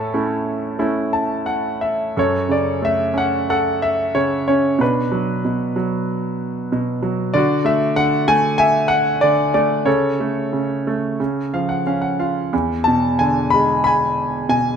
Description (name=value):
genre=classical, lyrical solo piano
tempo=93 BPM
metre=4/4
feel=uneven beats, rubato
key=F# minor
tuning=A4 = 440 Hz
part: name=clear concert grand piano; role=solo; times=0.0-14.8 s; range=E2 to B5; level=-16 LUFS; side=equal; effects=none
room=moderate recital hall reverb, RT60 1.5 s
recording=minimal, uncompressed stereo recording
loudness=-16 LUFS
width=side -7 dB against mid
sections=0.0-2.2 A section; 2.2-14.8 B section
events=grand piano fill 0.8-2.2, 11.2-12.5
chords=0.0 A; 2.2 F#m; 4.8 Bm; 7.4 Dadd9; 9.9 A/C#; 11.2 C#; 12.5 E7